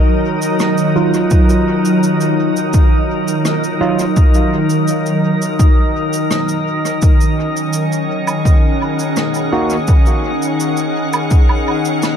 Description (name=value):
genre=ambient dub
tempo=84 BPM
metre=4/4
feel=straight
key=Eb minor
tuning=A4 = 440 Hz
part: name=soft additive organ-like pad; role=sustained chords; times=0.0-12.2 s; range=Eb3 to Gb5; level=-16 LUFS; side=equal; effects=ensemble chorus, built-in reverb
part: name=drifting glass-harmonics texture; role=texture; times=0.0-12.2 s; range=Eb4 to Eb5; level=-22 LUFS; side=left 2 dB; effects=chorus, built-in reverb
part: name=cabasa, rim click and woodblock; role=drums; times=0.4-12.2 s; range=none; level=-24 LUFS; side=right 1 dB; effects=dub echo
part: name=overdriven tine electric piano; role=stabs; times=1.0-4.0, 9.5-9.8 s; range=Gb3 to Gb4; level=-20 LUFS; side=right 2 dB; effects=phaser, dub echo
part: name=electronic kick drum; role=drums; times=1.3-11.5 s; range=none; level=-11 LUFS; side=equal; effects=overdrive
room=small room ambience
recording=echo-heavy mix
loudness=-12 LUFS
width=side -8 dB against mid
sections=0.0-12.2 A section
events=none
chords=0.0 Ebmadd9; 7.0 Gb6/Eb